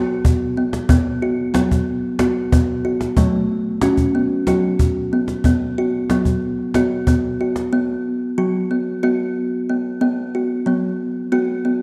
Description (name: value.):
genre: world meditative, meditative tuned percussion.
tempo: 184 BPM (eighths).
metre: 7/8.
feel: straight.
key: unclear.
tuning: A4 = 440 Hz.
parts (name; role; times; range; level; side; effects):
kalimba; arpeggios; 0.0-11.8 s; F#3 to F#4; -20 LUFS; equal; none.
cajon; percussion; 0.2-7.7 s; none; -22 LUFS; equal; none.
room: wet concert hall reverb, RT60 2.0 s.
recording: dark, warm production.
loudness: -19 LUFS.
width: mono.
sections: 0.0-7.7 A section; 7.7-11.8 A section.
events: none.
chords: 0.0 B5; 3.2 F#m; 5.4 B5.